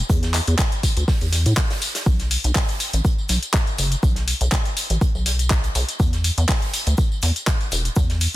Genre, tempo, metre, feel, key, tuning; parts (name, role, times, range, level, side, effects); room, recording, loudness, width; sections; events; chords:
deep house; 122 BPM; 4/4; swing 54% on 16ths; B minor; A4 = 440 Hz
rubbery square bass; bass; 0.0-8.3 s; E1 to A2; -20 LUFS; equal; sidechain pumping
deep house drum kit; drums; 0.1-8.3 s; handclaps, hi-hat, tambourine; -24 LUFS; left 1 dB
electronic kick drum; drums; 0.1-8.1 s; -20 LUFS; equal
warm soul drum kit; drums; 0.1-8.3 s; hi-hat, shaker, snare drum; -34 LUFS; right 1 dB; high-pass filter on hats, high-pass filter on snare, high-pass filter on perc, high-pass filter on room
little or no reverb; dense, heavily limited modern master; -18 LUFS; side -16 dB against mid
0.0-8.4 A section